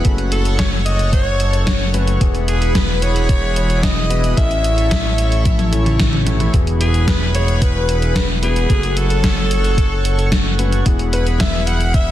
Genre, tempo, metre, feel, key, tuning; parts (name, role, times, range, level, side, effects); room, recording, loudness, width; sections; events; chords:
synthwave; 111 BPM; 4/4; straight; E major; A4 = 439 Hz
chorused pulse-width pad; sustained chords; 0.0-12.1 s; E4 to C#6; -25 LUFS; right 2 dB; sidechain pumping
dark concert grand piano; stabs; 0.0-12.1 s; A2 to B4; -26 LUFS; left 6 dB; digital delay
fat analog bass; bass; 0.0-12.1 s; E1 to A1; -18 LUFS; equal; tube saturation, sidechain pumping
electronic kick drum; drums; 0.0-12.0 s; -16 LUFS; equal
gated 80s digital drum machine; drums; 0.0-12.0 s; hi-hat, snare drum, toms; -22 LUFS; left 1 dB; gated reverb, gated reverb snare
raspy alto saxophone; melody; 0.3-12.1 s; G#4 to F#5; -24 LUFS; left 1 dB; digital delay
string machine, violins; second line; 0.3-12.1 s; G#4 to F#5; -27 LUFS; equal; ensemble chorus, digital delay
light reverb; dense, heavily limited modern master; -14 LUFS; side -13 dB against mid
0.0-12.1 A section
drum fill 5.5-6.5
0.0 F#m; 2.2 Eadd9; 4.4 A; 6.5 Eadd9; 8.7 F#m; 10.9 Eadd9